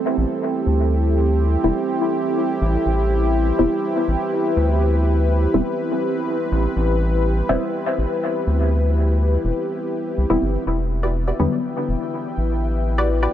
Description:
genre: dub techno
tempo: 123 BPM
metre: 4/4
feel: straight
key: A minor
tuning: A4 = 441 Hz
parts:
  - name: dark analog pad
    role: sustained chords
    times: 0.0-13.3 s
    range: D4 to G5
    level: -23 LUFS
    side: left 1 dB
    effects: chorus
  - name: filtered dub chord stab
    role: stabs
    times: 0.0-13.3 s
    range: D3 to E4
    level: -25 LUFS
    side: left 1 dB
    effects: chorus, phaser, dub echo
  - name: bubbling stepped-filter texture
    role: texture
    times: 0.0-13.3 s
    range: C4 to E5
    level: -30 LUFS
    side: right 8 dB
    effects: chorus, built-in reverb
  - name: round analog bass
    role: bass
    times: 0.2-13.3 s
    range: E1 to E2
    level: -19 LUFS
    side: equal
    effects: tube saturation
  - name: filtered dub chord stab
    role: riff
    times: 11.0-13.3 s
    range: F#4 to D5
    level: -26 LUFS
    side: right 1 dB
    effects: chorus, dub echo
room: light reverb, digital ambience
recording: nothing above 10.5 kHz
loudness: -18 LUFS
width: side -11 dB against mid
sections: 0.0-13.3 A section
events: none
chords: 0.0 Am7; 10.7 Em7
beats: 0.42 | 0.91 1.40 1.88 2.37 | 2.86 3.35 3.83 4.32 | 4.81 5.30 5.79 6.27 | 6.76 7.25 7.74 8.22 | 8.71 9.20 9.69 10.18 | 10.66 11.15 11.64 12.13 | 12.62 13.10

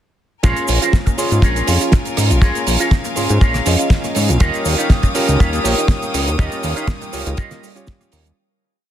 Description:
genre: nu-disco, nu disco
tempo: 121 BPM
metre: 4/4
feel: swing 54% on 16ths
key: Bb dorian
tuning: A4 = 440 Hz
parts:
  - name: warm electric grand piano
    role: accompaniment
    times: 0.4-8.3 s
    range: Db4 to C6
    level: -23 LUFS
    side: equal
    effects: sidechain pumping, dub echo
  - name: clear studio violin section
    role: sustained chords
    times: 0.4-8.3 s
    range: Bb4 to Eb6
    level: -26 LUFS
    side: left 1 dB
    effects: sidechain pumping
  - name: soft round pluck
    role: arpeggios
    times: 0.4-8.3 s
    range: G3 to Bb4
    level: -26 LUFS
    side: right 2 dB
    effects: chorus, sidechain pumping, dub echo
  - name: electric guitar with an envelope filter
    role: riff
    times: 0.4-8.0 s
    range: F4 to F5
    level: -25 LUFS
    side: right 1 dB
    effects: analog chorus, dub echo
  - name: fat analog bass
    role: bass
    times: 0.4-8.3 s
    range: Bb1 to Ab2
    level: -18 LUFS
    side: equal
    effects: sidechain pumping
  - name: damped 70s drum kit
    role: drums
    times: 0.4-8.4 s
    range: cabasa, hi-hat, rim click, snare drum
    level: -21 LUFS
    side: right 3 dB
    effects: none
  - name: kick drum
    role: drums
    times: 0.4-8.0 s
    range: none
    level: -14 LUFS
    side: equal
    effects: none
room: light reverb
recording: dense, heavily limited modern master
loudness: -14 LUFS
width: side -11 dB against mid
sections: 0.4-8.4 drop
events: drop 0.4-8.4; fade-out 5.7-8.4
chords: 0.4 Bbm7; 4.4 Eb9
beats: | 0.44 0.94 1.43 1.93 | 2.42 2.92 3.41 3.91 | 4.41 4.90 5.40 5.89 | 6.39 6.88 7.38 7.88

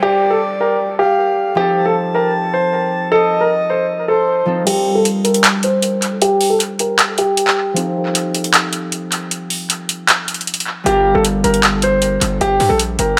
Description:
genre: hip hop, trap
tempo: 155 BPM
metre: 4/4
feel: half-time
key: G minor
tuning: A4 = 441 Hz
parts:
  - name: warm concert grand piano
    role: melody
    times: 0.0-7.7, 10.9-13.1 s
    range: G4 to C5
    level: -18 LUFS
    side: equal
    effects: low-pass filter, tape echo
  - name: breathy flute-like synth lead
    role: second line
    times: 0.0-4.6 s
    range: C5 to A5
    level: -23 LUFS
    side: equal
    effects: chorus, tremolo, tape echo
  - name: concert harp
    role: accompaniment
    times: 0.0-13.2 s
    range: F3 to Bb4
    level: -25 LUFS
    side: equal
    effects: low-pass filter
  - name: downlifter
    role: sound effects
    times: 0.0-1.6 s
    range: none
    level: -39 LUFS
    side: equal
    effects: none
  - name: booming analog drum machine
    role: drums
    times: 4.7-13.1 s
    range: crash cymbal, handclaps, hi-hat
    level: -18 LUFS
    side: equal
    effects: tape echo
  - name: distorted 808-style bass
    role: bass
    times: 10.9-13.2 s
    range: G1 to G2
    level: -23 LUFS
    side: equal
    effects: distortion
room: light reverb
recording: echo-heavy mix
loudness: -16 LUFS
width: mono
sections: 0.0-4.7 A section; 4.7-13.2 B section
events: kick muted 4.7-10.9; filter sweep 4.7-10.9; break 7.8-10.9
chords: 0.0 Gm7; 1.6 F7; 4.7 Gm7; 7.8 F7; 10.9 Gm7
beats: | 0.02 0.41 0.80 1.18 | 1.57 1.96 2.35 2.73 | 3.12 3.51 3.89 4.28 | 4.67 5.05 5.44 5.83 | 6.22 6.60 6.99 7.38 | 7.76 8.15 8.54 8.93 | 9.31 9.70 10.09 10.47 | 10.86 11.25 11.63 12.02 | 12.41 12.80 13.18

